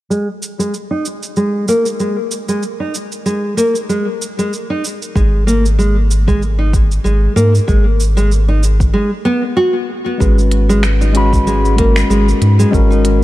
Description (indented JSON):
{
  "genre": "organic downtempo",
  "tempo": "95 BPM",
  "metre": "4/4",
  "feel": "swing 56% on 16ths",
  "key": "G# minor",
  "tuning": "A4 = 435 Hz",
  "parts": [
    { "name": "nylon-string guitar", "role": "arpeggios", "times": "0.1-13.0 s", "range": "G#3 to F#4", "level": "-17 LUFS", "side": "equal", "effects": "low-pass filter, ping-pong delay" },
    { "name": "organic electronic drum kit", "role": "drums", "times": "0.1-13.2 s", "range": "cabasa, finger snaps, hi-hat", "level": "-24 LUFS", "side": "right 2 dB", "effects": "none" },
    { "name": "warm sub bass", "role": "bass", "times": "5.2-13.2 s", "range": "G#1 to G#2", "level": "-13 LUFS", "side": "equal", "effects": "sidechain pumping" },
    { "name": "electronic kick drum", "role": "drums", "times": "5.2-12.9 s", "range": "none", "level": "-15 LUFS", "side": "equal", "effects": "none" },
    { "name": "mellow tine electric piano", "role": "accompaniment", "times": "10.2-13.2 s", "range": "G#3 to B5", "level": "-16 LUFS", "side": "left 2 dB", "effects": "sidechain pumping, ping-pong delay" }
  ],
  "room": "light reverb, digital ambience",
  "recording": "dark, warm production",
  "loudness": "-12 LUFS",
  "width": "side -16 dB against mid",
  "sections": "0.1-10.2 A section; 10.2-13.2 B section",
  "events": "filter sweep on nylon-string guitar 0.1-10.2; break 8.9-10.2",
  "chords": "0.1 N.C.; 10.2 G#madd9"
}